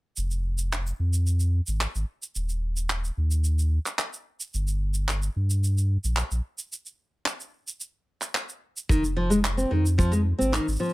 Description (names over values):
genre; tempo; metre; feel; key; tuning
folktronica; 110 BPM; 4/4; straight; F minor; A4 = 440 Hz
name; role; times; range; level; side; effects
warm sub bass; bass; 0.2-10.8 s; Eb1 to G2; -24 LUFS; equal; none
shaker and handclaps; drums; 0.2-10.9 s; none; -30 LUFS; right 1 dB; none
nylon-string guitar; arpeggios; 8.9-10.9 s; Eb3 to C4; -24 LUFS; equal; vintage 12-bit sampler grit, ping-pong delay, plate reverb
kick drum; drums; 8.9-10.1 s; none; -22 LUFS; equal; none
room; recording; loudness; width
little or no reverb; none; -24 LUFS; side -19 dB against mid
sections
0.2-8.9 A section; 8.9-10.9 B section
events
break 6.7-8.9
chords
0.2 Fm; 2.4 N.C.; 4.5 Gm; 6.7 N.C.; 8.9 Fm7